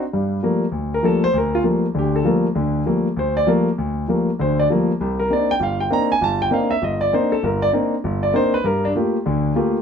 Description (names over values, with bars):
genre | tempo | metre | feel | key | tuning
jazz | 197 BPM | 4/4 | swing 63% on 8ths | G minor | A4 = 440 Hz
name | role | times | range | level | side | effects
warm concert grand piano | solo | 0.0-9.8 s | G1 to Bb5 | -17 LUFS | left 1 dB | none
room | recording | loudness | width
light reverb | minimal, uncompressed stereo recording | -17 LUFS | side -7 dB against mid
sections
0.1-9.8 A section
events
grand piano solo 0.1-9.8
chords
0.1 Gm9; 5.0 Cm9; 8.6 Gm9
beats
| 0.12 0.43 0.73 1.03 | 1.34 1.64 1.95 2.25 | 2.56 2.86 3.17 3.47 | 3.77 4.08 4.38 4.69 | 4.99 5.30 5.60 5.91 | 6.21 6.51 6.82 7.12 | 7.43 7.73 8.04 8.34 | 8.64 8.95 9.25 9.56